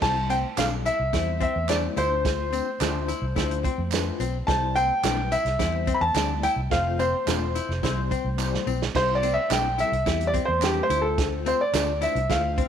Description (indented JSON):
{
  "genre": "uptempo 1960s-style soul",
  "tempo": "108 BPM",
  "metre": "4/4",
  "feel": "straight",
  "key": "C major",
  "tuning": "A4 = 436 Hz",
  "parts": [
    { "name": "clear concert grand piano", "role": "melody", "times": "0.0-12.7 s", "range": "G4 to B5", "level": "-25 LUFS", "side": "equal", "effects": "none" },
    { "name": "overdriven tine electric piano", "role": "accompaniment", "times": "0.0-12.6 s", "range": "G3 to D5", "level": "-33 LUFS", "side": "left 14 dB", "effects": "ensemble chorus" },
    { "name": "vintage muted fingered electric bass", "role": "bass", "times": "0.0-12.6 s", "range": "E1 to F2", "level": "-29 LUFS", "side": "equal", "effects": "none" },
    { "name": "vintage drum kit", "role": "drums", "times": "0.0-12.7 s", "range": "crash cymbal, hi-hat, kick drum, snare drum", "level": "-29 LUFS", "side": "right 5 dB", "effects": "none" },
    { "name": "congas", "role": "percussion", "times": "0.0-12.2 s", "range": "none", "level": "-42 LUFS", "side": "right 12 dB", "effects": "none" },
    { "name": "archtop guitar, miked and amplified", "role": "riff", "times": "0.3-12.7 s", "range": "C4 to E4", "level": "-32 LUFS", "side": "left 13 dB", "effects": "tube saturation" },
    { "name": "tambourine and handclaps", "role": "percussion", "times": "0.3-12.4 s", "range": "none", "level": "-36 LUFS", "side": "right 12 dB", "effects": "none" }
  ],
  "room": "light reverb",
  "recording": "1960s-style stereo with parts hard left and right",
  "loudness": "-22 LUFS",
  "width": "side -8 dB against mid",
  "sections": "0.0-8.9 A section; 8.9-12.7 B section",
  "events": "drum fill 8.4-8.9; grand piano solo 8.9-12.7",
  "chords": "0.0 C; 2.0 Dm7; 4.5 C; 6.7 F; 7.8 C; 10.9 Dm7"
}